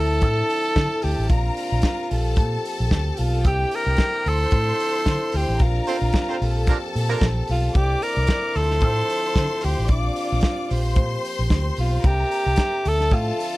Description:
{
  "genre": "disco",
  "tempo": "112 BPM",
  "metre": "4/4",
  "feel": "straight",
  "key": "G dorian",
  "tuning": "A4 = 440 Hz",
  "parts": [
    { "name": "breathy alto saxophone", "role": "melody", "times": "0.0-13.6 s", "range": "F4 to Bb4", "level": "-24 LUFS", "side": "equal", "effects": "none" },
    { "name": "clear studio string section", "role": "second line", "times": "0.0-13.6 s", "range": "G4 to D6", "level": "-30 LUFS", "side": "left 3 dB", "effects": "none" },
    { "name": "dark French horn section", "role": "sustained chords", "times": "0.0-13.6 s", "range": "C3 to E5", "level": "-32 LUFS", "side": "left 2 dB", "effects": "none" },
    { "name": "fingered electric bass", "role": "bass", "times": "0.0-13.3 s", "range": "A1 to D3", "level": "-22 LUFS", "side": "equal", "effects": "tube saturation" },
    { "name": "warm soul drum kit", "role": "drums", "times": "0.2-13.5 s", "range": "hi-hat, kick drum, snare drum", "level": "-23 LUFS", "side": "equal", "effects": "none" },
    { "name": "mellow horn section", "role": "stabs", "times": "5.9-7.3 s", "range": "Bb3 to C5", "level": "-27 LUFS", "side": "right 6 dB", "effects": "none" }
  ],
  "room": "studio reverb",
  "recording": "none",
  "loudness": "-19 LUFS",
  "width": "side -19 dB against mid",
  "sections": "0.0-13.6 A section",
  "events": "band accent 5.6-7.7",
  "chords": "0.0 Dm9; 1.3 Bbadd9; 2.1 Gm9/Bb; 3.4 C9; 4.3 Dm9; 5.6 Bbmaj9; 6.4 Gm9/Bb; 7.7 C9; 8.6 Dm9; 9.9 Bbadd9; 10.7 Gm7/Bb; 12.0 C9; 12.8 Dm9"
}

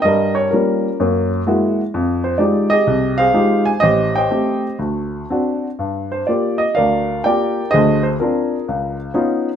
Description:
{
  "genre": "solo jazz",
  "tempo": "125 BPM",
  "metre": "4/4",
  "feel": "swing 69% on 8ths, rubato",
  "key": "unclear",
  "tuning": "A4 = 439 Hz",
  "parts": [
    { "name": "warm baby grand piano", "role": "solo", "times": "0.0-9.5 s", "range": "A1 to Ab5", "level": "-15 LUFS", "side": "equal", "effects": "none" }
  ],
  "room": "light reverb",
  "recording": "minimal, uncompressed stereo recording",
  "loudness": "-15 LUFS",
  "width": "side -8 dB against mid",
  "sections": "0.0-9.6 A section",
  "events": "none",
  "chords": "0.1 Gm7b5; 1.0 F#9; 1.9 Fm9; 3.8 Am7b5; 4.8 D7; 5.8 Gm7; 7.7 Dm7b5; 8.7 Db9"
}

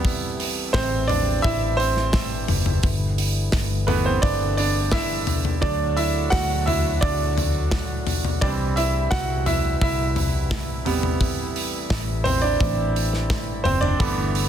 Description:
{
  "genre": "piano-driven pop",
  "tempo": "86 BPM",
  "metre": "4/4",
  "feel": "straight",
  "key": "unclear",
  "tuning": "A4 = 440 Hz",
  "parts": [
    { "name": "bright baby grand piano", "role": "accompaniment", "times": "0.0-14.5 s", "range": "C3 to F#5", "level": "-24 LUFS", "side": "right 3 dB", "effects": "none" },
    { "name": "mellow brass ensemble", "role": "sustained chords", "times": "0.0-14.5 s", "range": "A2 to F#4", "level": "-34 LUFS", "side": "left 2 dB", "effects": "none" },
    { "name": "vintage muted fingered electric bass", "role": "bass", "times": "0.0-14.5 s", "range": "F#1 to D2", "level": "-25 LUFS", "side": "equal", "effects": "none" },
    { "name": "modern studio drum kit", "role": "drums", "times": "0.0-14.5 s", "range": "hi-hat, kick drum, snare drum, toms", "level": "-24 LUFS", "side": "left 1 dB", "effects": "none" }
  ],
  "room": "small room ambience",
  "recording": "dense, heavily limited modern master",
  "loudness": "-20 LUFS",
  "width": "side -9 dB against mid",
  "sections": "0.0-14.5 A section",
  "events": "grand piano solo 0.0-14.5",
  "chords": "0.0 Am7; 2.8 G6; 5.6 D; 8.4 C; 10.9 Am7"
}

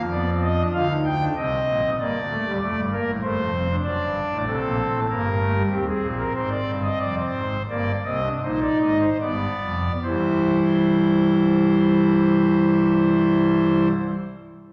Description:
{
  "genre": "classical, baroque-style 3-part fugue for pipe organ",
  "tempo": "69-97 BPM",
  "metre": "3/4",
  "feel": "straight",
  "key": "unclear",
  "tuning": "A4 = 440 Hz",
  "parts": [
    { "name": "pipe organ, foundations", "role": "solo", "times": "0.0-13.9 s", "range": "C1 to G5", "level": "-22 LUFS", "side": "equal", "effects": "none" }
  ],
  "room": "wet scoring stage reverb, RT60 1.6 s",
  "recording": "none",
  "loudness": "-22 LUFS",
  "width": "mono",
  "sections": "0.0-10.0 A section; 10.0-14.7 B section",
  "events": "slowing down 4.8-10.0",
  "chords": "0.1 G7/F; 1.4 Cm; 2.0 Gm; 3.2 F69; 3.8 D7/F#; 5.1 Gm; 5.7 Cm/Eb; 7.0 Dm7b5/F; 7.7 Cm/G; 9.2 G7; 10.0 C"
}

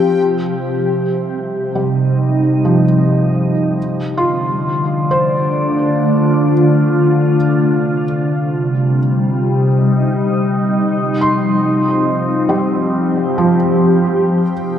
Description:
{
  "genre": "ambient",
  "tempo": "67 BPM",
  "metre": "4/4",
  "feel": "straight",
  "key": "C minor",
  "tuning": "A4 = 440 Hz",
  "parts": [
    { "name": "glassy FM pad", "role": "sustained chords", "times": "0.0-14.8 s", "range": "C3 to G4", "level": "-14 LUFS", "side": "equal", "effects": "ensemble chorus, built-in reverb, phaser" },
    { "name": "clear studio violin section", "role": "texture", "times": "0.0-0.2, 14.5-14.8 s", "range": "G5", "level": "-37 LUFS", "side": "equal", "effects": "none" },
    { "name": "felt-muted upright piano", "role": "arpeggios", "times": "1.8-14.8 s", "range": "F3 to C6", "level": "-18 LUFS", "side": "equal", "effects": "diffuse ambient delay" }
  ],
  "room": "wet cathedral reverb, RT60 5.9 s",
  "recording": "dark, warm production",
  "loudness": "-13 LUFS",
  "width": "side -9 dB against mid",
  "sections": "0.2-14.5 A section",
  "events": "none",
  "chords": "0.2 Cm; 3.8 Dm; 7.4 Cm; 10.9 F5"
}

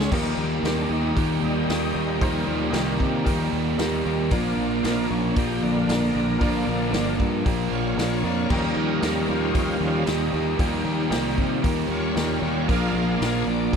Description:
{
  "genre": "classic rock",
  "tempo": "115 BPM",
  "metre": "4/4",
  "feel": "straight",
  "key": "unclear",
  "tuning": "A4 = 445 Hz",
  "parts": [
    { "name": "bright tonewheel organ", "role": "sustained chords", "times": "0.0-13.8 s", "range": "D3 to F5", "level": "-30 LUFS", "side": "equal", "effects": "overdrive, chorus vibrato, slow rotary speaker" },
    { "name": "biting overdriven guitar", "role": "riff", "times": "0.0-13.8 s", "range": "Bb2 to Bb4", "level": "-26 LUFS", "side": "right 15 dB", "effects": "none" },
    { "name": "overdriven electric guitar", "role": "riff", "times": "0.0-13.8 s", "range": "Bb2 to Bb4", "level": "-27 LUFS", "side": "left 13 dB", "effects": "none" },
    { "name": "growling fingered electric bass", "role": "bass", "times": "0.0-13.8 s", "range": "G1 to C3", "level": "-28 LUFS", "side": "equal", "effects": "overdrive" },
    { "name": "raw garage drum kit", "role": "drums", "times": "0.0-13.8 s", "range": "crash cymbal, hi-hat, kick drum, snare drum", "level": "-28 LUFS", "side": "equal", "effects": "none" },
    { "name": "honky-tonk upright piano", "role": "accompaniment", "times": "0.1-13.8 s", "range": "Bb3 to C5", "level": "-34 LUFS", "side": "left 1 dB", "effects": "none" }
  ],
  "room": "light reverb",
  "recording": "dry, close 1970s-style studio recording",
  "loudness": "-21 LUFS",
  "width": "side -6 dB against mid",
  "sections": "0.1-13.8 A section",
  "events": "tonewheel organ solo 0.1-13.8",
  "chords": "0.1 Ebadd9; 4.3 Bb; 8.5 Ebadd9; 12.7 Bb"
}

